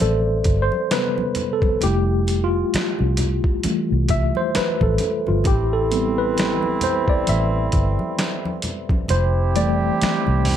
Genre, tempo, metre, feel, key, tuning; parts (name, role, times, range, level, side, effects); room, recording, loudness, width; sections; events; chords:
R&B, neo-soul; 66 BPM; 4/4; swing 58% on 16ths; A minor; A4 = 440 Hz
tine electric piano; accompaniment; 0.0-10.6 s; C3 to E5; -21 LUFS; left 1 dB; overdrive, fast stereo tremolo
vintage muted fingered electric bass; bass; 0.0-10.6 s; F1 to C2; -21 LUFS; equal
boom bap sampler-style drum kit; drums; 0.0-10.6 s; hi-hat, kick drum, snare drum; -23 LUFS; equal
congas; percussion; 0.0-10.6 s; -30 LUFS; left 1 dB
warm horn section; stabs; 5.5-10.6 s; E3 to G4; -25 LUFS; right 5 dB; tape echo
light reverb; -18 LUFS; side -10 dB against mid
0.0-10.6 A section
tine electric piano solo 0.0-10.6
0.0 Am9; 1.8 Fmaj9; 5.5 Am9; 9.1 Fmaj9